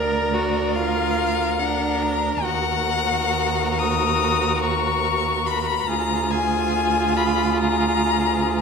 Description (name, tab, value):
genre	classical, slow romantic movement for string quartet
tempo	71 BPM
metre	4/4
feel	rubato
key	Eb minor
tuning	A4 = 440 Hz
part	rich violin	melody	0.0-8.6 s	D5 to Eb6	-23 LUFS	left 8 dB	none
part	clear violin	second line	0.0-8.6 s	Ab4 to Bb4	-27 LUFS	left 3 dB	none
part	rich viola	accompaniment	0.0-8.6 s	D4 to Bb4	-26 LUFS	right 3 dB	none
part	warm cello	bass	0.0-8.6 s	D2 to Eb2	-25 LUFS	right 5 dB	none
room	wet recital hall reverb, RT60 1.4 s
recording	none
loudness	-19 LUFS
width	side -5 dB against mid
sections	0.0-8.6 A section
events	none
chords	0.0 Bb/D; 2.4 Ebm; 5.9 Bb7/D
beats	0.77 1.60 | 2.44 3.32 4.21 5.04 | 5.89 6.75 7.59 8.44